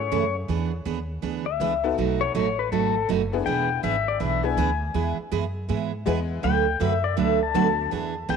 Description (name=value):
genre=country, western swing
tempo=162 BPM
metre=4/4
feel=swing 64% on 8ths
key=unclear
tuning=A4 = 444 Hz
part: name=pedal steel guitar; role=second line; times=0.0-8.4 s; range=A4 to A5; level=-26 LUFS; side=left 10 dB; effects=none
part: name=tack piano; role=accompaniment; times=0.0-7.9 s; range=G#3 to B4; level=-31 LUFS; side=left 9 dB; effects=none
part: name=upright bass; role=bass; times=0.0-8.4 s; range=E1 to G#2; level=-29 LUFS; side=equal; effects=none
part: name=picked steel-string acoustic guitar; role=accompaniment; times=0.1-8.4 s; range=B2 to B4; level=-26 LUFS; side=right 10 dB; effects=none
room=moderate plate reverb, RT60 2.8 s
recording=1960s-style stereo with parts hard left and right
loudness=-22 LUFS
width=side -6 dB against mid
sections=0.0-8.4 A section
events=pedal steel guitar solo 0.0-8.4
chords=0.5 E7; 2.0 B7; 3.5 E7; 5.0 E; 6.4 Bm7/D